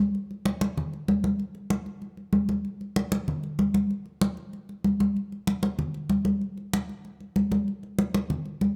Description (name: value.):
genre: jazz.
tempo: 191 BPM.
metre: 4/4.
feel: straight.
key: none.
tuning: none.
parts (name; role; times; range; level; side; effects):
congas; percussion; 0.1-8.8 s; none; -28 LUFS; equal; none.
room: moderate large studio reverb, RT60 1.4 s.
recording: close, detailed microphones.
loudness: -28 LUFS.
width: mono.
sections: 0.0-5.2 A section; 5.2-8.8 B section.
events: none.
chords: none.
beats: | 0.15 0.46 0.77 1.09 | 1.40 1.71 2.02 2.34 | 2.65 2.96 3.28 3.59 | 3.90 4.22 4.53 4.85 | 5.16 5.48 5.79 6.11 | 6.42 6.74 7.05 7.37 | 7.68 8.00 8.31 8.63.